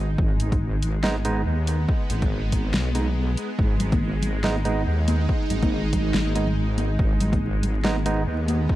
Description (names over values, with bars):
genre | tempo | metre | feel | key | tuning
deep dubstep | 141 BPM | 4/4 | swing 58% on 16ths, half-time | G# minor | A4 = 442 Hz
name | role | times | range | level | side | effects
bowed-like drone | sustained chords | 0.0-8.8 s | G#3 to D#4 | -31 LUFS | equal | built-in reverb, phaser
wobble bass | bass | 0.0-8.7 s | G#1 to D#2 | -24 LUFS | equal | chorus
electronic kick drum | drums | 0.2-8.8 s | none | -24 LUFS | equal | overdrive
deep house drum kit | drums | 0.4-8.6 s | hi-hat, snare drum | -28 LUFS | left 1 dB | overdrive
barky tine electric piano | stabs | 1.0-8.2 s | G#3 to D#4 | -30 LUFS | right 4 dB | vintage 12-bit sampler grit, dub echo
congas | percussion | 3.8-8.6 s | none | -31 LUFS | left 2 dB | none
room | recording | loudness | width
little or no reverb | dark, warm production, vinyl crackle | -21 LUFS | side -15 dB against mid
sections
0.0-8.8 A section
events
none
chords
0.0 G#m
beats
| 0.18 0.61 1.03 1.46 | 1.89 2.31 2.74 3.16 | 3.59 4.01 4.44 4.86 | 5.29 5.72 6.14 6.57 | 6.99 7.42 7.84 8.27 | 8.69